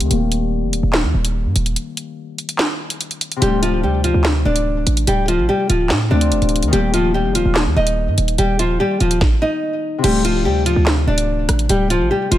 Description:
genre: hip hop, drill.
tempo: 145 BPM.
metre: 4/4.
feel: half-time.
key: D phrygian.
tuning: A4 = 440 Hz.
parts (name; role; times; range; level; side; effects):
Celtic harp; accompaniment; 0.0-12.4 s; C3 to G4; -24 LUFS; left 5 dB; low-pass filter.
hard-hitting 808-style bass; bass; 0.0-12.4 s; D1 to A2; -18 LUFS; right 1 dB; none.
drill drum kit; drums; 0.0-12.4 s; crash cymbal, handclaps, hi-hat, kick drum, rim click, snare drum; -20 LUFS; equal; none.
nylon-string guitar; melody; 3.4-12.4 s; F3 to Eb5; -18 LUFS; equal; low-pass filter, ping-pong delay.
room: little or no reverb.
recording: none.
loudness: -15 LUFS.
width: side -13 dB against mid.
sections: 0.0-10.0 A section; 10.0-12.4 B section.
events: break 0.0-3.4; filter sweep 0.0-3.4.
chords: 0.1 Eb; 3.4 Dm7; 6.7 Eb; 10.0 Dm7.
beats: | 0.11 0.52 0.94 1.35 | 1.76 2.18 2.59 3.00 | 3.42 3.83 4.25 4.66 | 5.07 5.49 5.90 6.32 | 6.73 7.14 7.56 7.97 | 8.38 8.80 9.21 9.62 | 10.04 10.45 10.87 11.28 | 11.69 12.11.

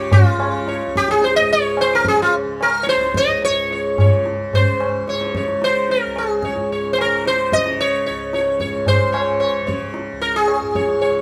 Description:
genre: indian classical, Hindustani.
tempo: 110 BPM.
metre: 4/4.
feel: straight.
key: Db raga yaman.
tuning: A4 = 438 Hz.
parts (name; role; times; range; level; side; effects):
sitar; melody; 0.0-11.2 s; F4 to Eb5; -20 LUFS; equal; none.
tanpura; drone; 0.0-11.2 s; Db2 to Db3; -30 LUFS; equal; none.
tabla; percussion; 0.1-11.2 s; none; -23 LUFS; equal; none.
room: moderate stone room reverb, RT60 1.0 s.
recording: band playing live in one room.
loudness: -18 LUFS.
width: mono.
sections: 0.0-4.5 A section; 4.5-11.2 B section.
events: speeding up 0.0-11.2.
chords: none.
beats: | 0.12 0.67 1.23 1.78 | 2.33 2.88 3.43 3.98 | 4.53 5.07 5.62 6.16 | 6.70 7.25 7.79 8.32 | 8.86 9.40 9.94 10.47 | 11.01.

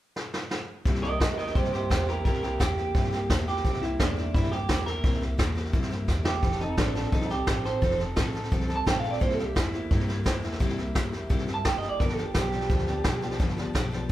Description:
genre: rockabilly.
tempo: 172 BPM.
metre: 4/4.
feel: straight.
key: C mixolydian.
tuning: A4 = 439 Hz.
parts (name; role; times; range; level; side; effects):
vintage brush drum kit; drums; 0.2-14.1 s; hi-hat, kick drum, snare drum; -27 LUFS; equal; none.
picked steel-string acoustic guitar; accompaniment; 0.9-14.1 s; G2 to A4; -34 LUFS; left 2 dB; none.
upright bass; bass; 0.9-14.1 s; F1 to G2; -32 LUFS; equal; none.
electric guitar through a small old amp; melody; 1.0-13.4 s; D4 to A5; -30 LUFS; right 3 dB; none.
room: moderate large studio reverb, RT60 1.4 s.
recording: band playing live in one room.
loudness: -24 LUFS.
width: side -14 dB against mid.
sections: 0.9-14.1 A section.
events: drum fill 0.2-0.9, 6.1-6.4.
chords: 0.0 N.C.; 0.9 C7; 6.4 F7; 9.2 C7; 12.0 G7.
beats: 0.16 0.51 | 0.86 1.21 1.55 1.90 | 2.25 2.60 2.95 3.30 | 3.65 3.99 4.34 4.69 | 5.04 5.39 5.73 6.08 | 6.43 6.78 7.13 7.47 | 7.82 8.17 8.52 8.87 | 9.22 9.57 9.91 10.26 | 10.61 10.96 11.31 11.66 | 12.01 12.36 12.70 13.05 | 13.40 13.75 14.10.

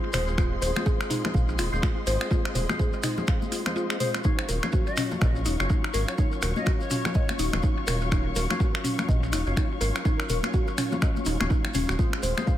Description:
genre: afro house.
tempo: 124 BPM.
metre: 4/4.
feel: swing 59% on 16ths.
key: Eb dorian.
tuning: A4 = 440 Hz.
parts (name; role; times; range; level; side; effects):
muted studio string section; sustained chords; 0.0-12.6 s; Gb3 to Db6; -37 LUFS; left 3 dB; sidechain pumping.
percussive tonewheel organ; stabs; 0.0-12.6 s; Gb3 to F4; -34 LUFS; left 3 dB; chorus vibrato, slow rotary speaker, sidechain pumping, analog delay.
mallet-like synth pluck; arpeggios; 0.1-12.6 s; Db4 to F5; -32 LUFS; equal; chorus, sidechain pumping, analog delay.
round analog bass; bass; 0.1-12.3 s; Eb1 to Bb1; -28 LUFS; equal; sidechain pumping.
afro-pop drum kit; drums; 0.1-12.5 s; finger snaps, hi-hat, toms; -31 LUFS; equal; small room ambience, analog delay.
congas; percussion; 0.1-12.5 s; none; -36 LUFS; left 3 dB; analog delay.
shekere; percussion; 0.1-12.6 s; none; -41 LUFS; left 3 dB; analog delay.
electronic kick drum; drums; 0.4-12.6 s; none; -25 LUFS; equal; small room ambience.
bright silver concert flute; melody; 4.9-7.3 s; Db5 to Eb5; -39 LUFS; left 2 dB; analog delay.
room: light reverb, small room ambience.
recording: echo-heavy mix.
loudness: -23 LUFS.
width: side -12 dB against mid.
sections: 0.0-12.6 A section.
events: none.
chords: 0.0 Fm/Eb; 4.2 Ebm9; 12.0 Fm.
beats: | 0.38 0.86 1.34 1.83 | 2.31 2.80 3.28 3.76 | 4.25 4.73 5.21 5.70 | 6.18 6.67 7.15 7.63 | 8.12 8.60 9.09 9.57 | 10.05 10.54 11.02 11.51 | 11.99 12.47.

